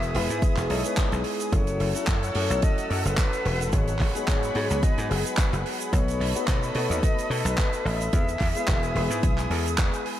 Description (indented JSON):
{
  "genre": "nu-disco, nu disco",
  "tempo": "109 BPM",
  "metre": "4/4",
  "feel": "swing 54% on 16ths",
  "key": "unclear",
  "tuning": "A4 = 445 Hz",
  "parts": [
    { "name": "bright concert flute", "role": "melody", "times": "0.0-10.1 s", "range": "G#4 to E5", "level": "-32 LUFS", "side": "left 2 dB", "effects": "ping-pong delay" },
    { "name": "clear concert grand piano", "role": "accompaniment", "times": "0.0-10.2 s", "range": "F#3 to C#5", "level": "-31 LUFS", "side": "left 2 dB", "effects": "analog delay" },
    { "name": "lush unison pad", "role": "sustained chords", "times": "0.0-10.2 s", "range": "G#4 to E6", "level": "-34 LUFS", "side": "equal", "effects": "chorus, sidechain pumping" },
    { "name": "dry thumbed slap bass", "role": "bass", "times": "0.0-9.9 s", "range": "E1 to B2", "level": "-27 LUFS", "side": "equal", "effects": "none" },
    { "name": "tight funk drum kit", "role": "drums", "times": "0.0-10.2 s", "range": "handclaps, hi-hat, shaker", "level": "-32 LUFS", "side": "right 2 dB", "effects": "none" },
    { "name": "electronic kick drum", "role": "drums", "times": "0.4-9.9 s", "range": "none", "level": "-24 LUFS", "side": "equal", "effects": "none" }
  ],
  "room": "light reverb, small room ambience",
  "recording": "none",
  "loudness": "-22 LUFS",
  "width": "side -12 dB against mid",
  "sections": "0.0-10.2 A section",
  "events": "none",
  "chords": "0.0 Emaj7; 1.5 F#m7; 3.7 G#m7; 5.9 B7; 8.1 Emaj7"
}